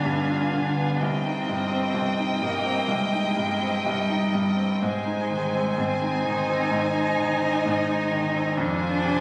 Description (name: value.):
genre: classical, slow romantic movement for piano quartet.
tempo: 63 BPM.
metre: 4/4.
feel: rubato.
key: C minor.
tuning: A4 = 441 Hz.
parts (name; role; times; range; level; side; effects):
rich violin; melody; 0.0-9.2 s; G5 to Ab5; -33 LUFS; equal; none.
rich cello; second line; 0.0-9.2 s; G3 to Eb4; -29 LUFS; equal; none.
rich violin; second line; 0.0-9.2 s; C5 to F5; -34 LUFS; equal; none.
clear concert grand piano; accompaniment; 0.0-9.2 s; C2 to F4; -28 LUFS; equal; none.
room: wet concert hall reverb, RT60 2.2 s.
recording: recorded on a phone in the room, studio reverb, compression.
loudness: -25 LUFS.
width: mono.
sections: 0.0-9.2 A section.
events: none.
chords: 0.0 G7b9; 1.0 Cm; 4.8 Ab; 8.6 Fm.